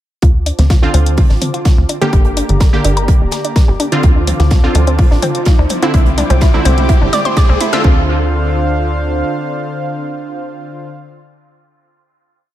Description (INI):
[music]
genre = melodic techno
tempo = 126 BPM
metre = 4/4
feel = straight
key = D minor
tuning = A4 = 441 Hz
[part]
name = warm analog pad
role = sustained chords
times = 0.2-10.9 s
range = D3 to D6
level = -23 LUFS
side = equal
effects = chorus, sidechain pumping
[part]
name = analog pluck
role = arpeggios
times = 0.2-8.1 s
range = C4 to E5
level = -21 LUFS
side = equal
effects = chorus, sidechain pumping, dub echo
[part]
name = tight sequencer bass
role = bass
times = 0.2-9.2 s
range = D1 to D2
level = -14 LUFS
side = equal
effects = sidechain pumping
[part]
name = electronic kick drum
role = drums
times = 0.2-7.9 s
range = none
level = -10 LUFS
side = equal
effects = none
[part]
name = house drum kit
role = drums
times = 0.2-7.8 s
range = hi-hat, toms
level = -22 LUFS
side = left 2 dB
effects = sidechain pumping on hats, sidechain pumping on toms
[part]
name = tight funk drum kit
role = drums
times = 0.2-7.7 s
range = hi-hat, snare drum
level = -30 LUFS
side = right 3 dB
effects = sidechain pumping on hats, high-pass filter on hats, high-pass filter on snare, high-pass filter on room
[part]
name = riser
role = sound effects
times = 3.3-7.8 s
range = none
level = -26 LUFS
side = left 1 dB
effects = none
[part]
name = synth brass stab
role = stabs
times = 0.8-10.9 s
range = D3 to G4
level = -19 LUFS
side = right 2 dB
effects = chorus, cassette tape, sidechain pumping, dub echo
[sound]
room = light reverb, digital ambience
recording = none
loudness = -10 LUFS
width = side -13 dB against mid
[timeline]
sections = 0.2-7.8 build; 7.8-11.7 final chord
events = build-up 0.2-7.8; drum fill 0.2-7.8; filter sweep on synth arpeggio sound 0.2-7.8; filter sweep on analog synth pad 0.2-7.8; riser 3.3-7.8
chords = 0.2 Dm7; 2.1 Gm; 4.0 Dm7; 5.9 Cadd9; 7.8 Dm7